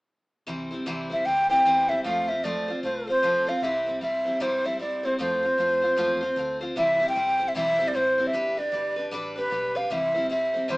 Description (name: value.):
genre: honky-tonk and classic country.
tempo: 153 BPM.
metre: 4/4.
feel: swing 62% on 8ths.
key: C major.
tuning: A4 = 440 Hz.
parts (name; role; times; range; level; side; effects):
picked steel-string acoustic guitar; accompaniment; 0.5-10.8 s; C3 to C5; -31 LUFS; equal; none.
vintage muted fingered electric bass; bass; 0.5-10.8 s; G1 to G2; -47 LUFS; equal; none.
breathy mellow silver concert flute; melody; 1.1-10.8 s; B4 to G5; -23 LUFS; equal; none.
room: wet studio reverb, RT60 0.7 s.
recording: band playing live in one room, small speaker sound.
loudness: -22 LUFS.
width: side -23 dB against mid.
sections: 0.5-3.6 A section; 3.6-10.8 B section.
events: none.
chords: 0.5 C; 2.0 F; 3.6 C; 5.2 F; 6.8 C; 8.3 G; 9.9 C.